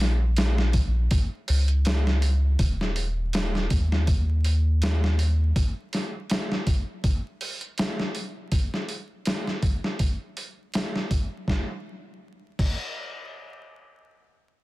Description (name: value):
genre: trip hop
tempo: 81 BPM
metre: 4/4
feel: swing 55% on 16ths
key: Bb minor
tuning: A4 = 440 Hz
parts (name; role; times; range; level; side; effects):
- soft dub sub bass; bass; 0.0-5.5 s; Eb1 to Eb2; -22 LUFS; equal; none
- trip hop sampler-style drum kit; drums; 0.0-12.8 s; crash cymbal, hi-hat, kick drum, snare drum; -26 LUFS; equal; overdrive
room: little or no reverb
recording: dense, heavily limited modern master, vinyl crackle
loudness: -23 LUFS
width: side -19 dB against mid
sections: 0.0-11.5 A section; 11.5-14.4 B section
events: none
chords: none